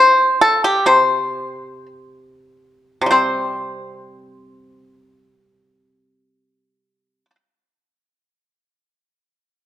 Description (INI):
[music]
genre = chinese traditional, Chinese solo plucked strings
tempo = free time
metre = none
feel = none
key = unclear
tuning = A4 = 441 Hz
[part]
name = pipa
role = solo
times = 0.0-7.4 s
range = C3 to C5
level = -13 LUFS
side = left 1 dB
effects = none
[sound]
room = light reverb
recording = dark, warm production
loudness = -14 LUFS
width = side -12 dB against mid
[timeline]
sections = 0.0-3.1 A section; 3.1-8.2 B section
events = slowing down 0.0-3.1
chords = none